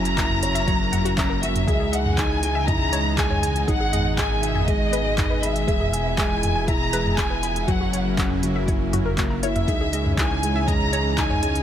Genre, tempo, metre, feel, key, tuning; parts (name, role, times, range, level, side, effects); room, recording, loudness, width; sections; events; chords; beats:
piano and strings electronica; 120 BPM; 4/4; straight; A4 = 440 Hz
rich chamber violin section; melody; 0.0-11.6 s; D#5 to A#5; -26 LUFS; left 1 dB; shimmer reverb
lush unison pad; sustained chords; 0.0-11.6 s; B2 to E4; -30 LUFS; right 1 dB; chorus, sidechain pumping, shimmer reverb
dark concert grand piano; riff; 0.0-11.6 s; F#3 to G#5; -27 LUFS; equal; shimmer reverb
dark detuned saw bass; bass; 0.0-11.6 s; E1 to C#2; -27 LUFS; equal; sidechain pumping
deep house drum kit; drums; 0.1-11.6 s; handclaps, hi-hat, toms; -28 LUFS; equal
electronic kick drum; drums; 0.2-11.3 s; -25 LUFS; equal
analog pluck; arpeggios; 0.5-11.5 s; F#4 to B5; -33 LUFS; left 4 dB; chorus, sidechain pumping, digital delay, shimmer reverb
light reverb; -19 LUFS; side -10 dB against mid
0.0-1.7 A section; 1.7-11.6 A section
drop 0.0-1.7, 1.7-11.6
0.0 F#7; 1.7 C#madd9; 3.7 G#m; 5.7 E; 7.7 F#7; 9.7 C#madd9
0.18 0.68 1.18 | 1.68 2.18 2.68 3.18 | 3.68 4.18 4.68 5.18 | 5.68 6.18 6.68 7.18 | 7.68 8.18 8.68 9.18 | 9.68 10.18 10.68 11.18